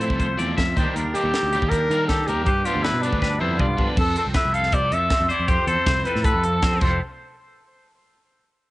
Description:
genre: math rock and midwest emo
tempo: 159 BPM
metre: 4/4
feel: straight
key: F lydian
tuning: A4 = 440 Hz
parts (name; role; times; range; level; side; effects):
- warm trumpet; melody; 0.0-7.0 s; D4 to F5; -23 LUFS; equal; cassette tape
- twangy electric guitar; accompaniment; 0.0-7.0 s; F2 to A4; -30 LUFS; right 3 dB; ensemble chorus, cassette tape
- twangy electric guitar; arpeggios; 0.0-7.0 s; F4 to E5; -28 LUFS; left 3 dB; vibrato effect, cassette tape
- overdriven electric guitar; riff; 0.0-4.0 s; D3 to F4; -30 LUFS; equal; cassette tape
- picked electric bass; bass; 0.0-7.0 s; F1 to Eb3; -26 LUFS; equal; none
- crisp fusion drum kit; drums; 0.0-6.9 s; crash cymbal, hi-hat, kick drum, snare drum, toms; -24 LUFS; equal; cassette tape
room: light reverb, small room ambience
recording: home recording on cassette, nothing above 10.8 kHz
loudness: -19 LUFS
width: side -18 dB against mid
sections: 0.0-4.0 A section; 4.0-7.0 B section; 7.0-8.5 C section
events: drum fill 3.2-4.0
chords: 0.0 Fmaj7; 0.8 Ebmaj7; 2.5 G7; 4.0 Fmaj7; 7.0 N.C.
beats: 0.20 0.58 | 0.95 1.33 1.71 2.09 | 2.47 2.84 3.22 3.60 | 3.98 4.36 4.73 5.11 | 5.49 5.87 6.25 6.62 | 7.00

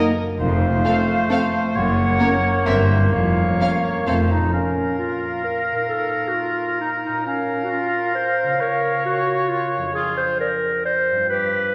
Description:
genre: cinematic, playful, whimsical film cue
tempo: 133 BPM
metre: 3/4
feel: straight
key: Bb minor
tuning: A4 = 439 Hz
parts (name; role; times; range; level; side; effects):
- rich studio violin section; melody; 0.0-4.1 s; Db5 to F5; -32 LUFS; equal; none
- clear oboe; second line; 0.0-11.7 s; F4 to Eb5; -29 LUFS; equal; none
- rich studio violin section; second line; 0.0-4.1 s; A4 to Bb4; -33 LUFS; equal; none
- silver concert flute; second line; 0.0-10.9 s; D5 to Gb5; -29 LUFS; equal; none
- warm clarinet; second line; 0.0-11.7 s; A3 to C5; -25 LUFS; equal; none
- rich studio viola section; accompaniment; 0.0-4.2 s; Bb3 to Db4; -30 LUFS; equal; none
- mellow French horn section; sustained chords; 0.0-4.2 s; A3 to Eb4; -31 LUFS; equal; none
- concert harp; arpeggios; 0.0-11.7 s; F2 to C5; -30 LUFS; equal; none
- rich studio cello section; bass; 0.4-4.5 s; F2 to G2; -26 LUFS; equal; none
- rich studio double bass section; bass; 0.4-4.5 s; F1 to G1; -27 LUFS; equal; none
room: wet scoring stage reverb, RT60 1.9 s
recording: heard from further back in the room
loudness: -20 LUFS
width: mono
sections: 0.0-4.5 A section; 4.5-11.7 B section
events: none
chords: 0.4 F; 1.8 Gb; 2.7 C7/G; 3.1 Bbm/F; 4.1 F; 4.5 Bbm; 5.9 F5/Bb; 7.3 Bbm; 8.6 Bbm/Db; 10.0 Dm7b5/F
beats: | 0.41 0.85 1.30 | 1.75 2.21 2.66 | 3.13 3.60 4.07 | 4.53 4.99 5.45 | 5.90 6.35 6.81 | 7.26 7.71 8.16 | 8.61 9.05 9.50 | 9.95 10.40 10.85 | 11.29 11.74

